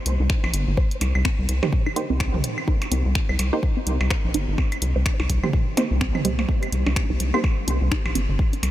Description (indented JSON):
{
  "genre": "minimal techno",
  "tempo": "126 BPM",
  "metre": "4/4",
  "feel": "swing 59% on 16ths",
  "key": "C minor",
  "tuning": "A4 = 441 Hz",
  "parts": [
    { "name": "hollow square pluck", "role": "riff", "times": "0.0-8.6 s", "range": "G3 to C5", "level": "-29 LUFS", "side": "right 1 dB", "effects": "chorus, phaser, vintage 12-bit sampler grit, sidechain pumping, analog delay" },
    { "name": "rubbery square bass", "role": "bass", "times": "0.1-8.7 s", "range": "G1 to C2", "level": "-22 LUFS", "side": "equal", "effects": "sidechain pumping" },
    { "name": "punchy analog drum machine", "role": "drums", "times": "0.1-8.7 s", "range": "finger snaps, hi-hat", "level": "-31 LUFS", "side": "left 1 dB", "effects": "none" },
    { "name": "electronic kick drum", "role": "drums", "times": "0.3-8.5 s", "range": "none", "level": "-23 LUFS", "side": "equal", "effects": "none" },
    { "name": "electronic claves, percussion blips and toms", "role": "percussion", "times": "0.4-8.7 s", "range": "none", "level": "-31 LUFS", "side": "right 3 dB", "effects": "diffuse ambient delay" },
    { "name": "filtered dub chord stab", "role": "stabs", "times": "1.6-7.4 s", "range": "Bb3 to C5", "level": "-31 LUFS", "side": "right 3 dB", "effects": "chorus, diffuse ambient delay" }
  ],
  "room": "light reverb",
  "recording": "none",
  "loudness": "-20 LUFS",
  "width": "side -14 dB against mid",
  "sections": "0.0-8.7 A section",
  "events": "none",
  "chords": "0.0 Cm7"
}